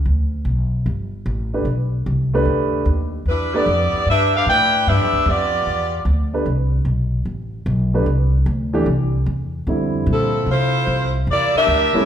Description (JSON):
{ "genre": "jazz, big band swing", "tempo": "150 BPM", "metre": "4/4", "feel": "swing 67% on 8ths", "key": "C major", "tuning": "A4 = 441 Hz", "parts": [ { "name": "upright bass", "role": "bass", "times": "0.0-12.0 s", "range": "G1 to C3", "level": "-19 LUFS", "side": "equal", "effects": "none" }, { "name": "warm concert grand piano", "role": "accompaniment", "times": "1.5-3.7, 6.3-12.1 s", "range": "D3 to B4", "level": "-22 LUFS", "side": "right 1 dB", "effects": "none" }, { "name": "clear saxophone section", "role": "melody", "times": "3.3-6.1, 10.1-12.1 s", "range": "F3 to G5", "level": "-17 LUFS", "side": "equal", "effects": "none" } ], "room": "wet large studio reverb, RT60 1.2 s", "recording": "band playing live in one room", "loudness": "-16 LUFS", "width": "side -9 dB against mid", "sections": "0.0-9.7 A section; 9.7-12.1 B section", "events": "none", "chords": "0.1 D5; 1.7 B7alt; 3.3 Em7; 4.9 G7; 6.5 Cmaj7sus2; 8.9 C; 9.7 Fmaj7; 11.3 Em7b5" }